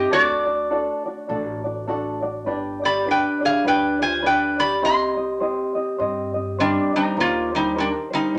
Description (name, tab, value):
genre	Hawaiian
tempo	102 BPM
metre	4/4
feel	swing 59% on 8ths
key	C minor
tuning	A4 = 440 Hz
part	metal-body resonator slide guitar	melody	0.0-8.4 s	G3 to C6	-22 LUFS	equal	none
part	vibraphone with medium hard mallets	second line	0.0-8.3 s	A3 to C5	-30 LUFS	equal	none
part	tenor ukulele	accompaniment	0.0-8.4 s	C4 to Eb5	-29 LUFS	equal	none
part	upright bass	bass	0.0-8.4 s	G1 to G2	-38 LUFS	equal	none
room	wet studio reverb, RT60 0.7 s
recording	none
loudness	-22 LUFS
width	mono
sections	0.0-7.2 A section; 7.2-8.4 B section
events	none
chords	0.1 D; 2.5 G; 4.8 Cm; 7.2 Eb6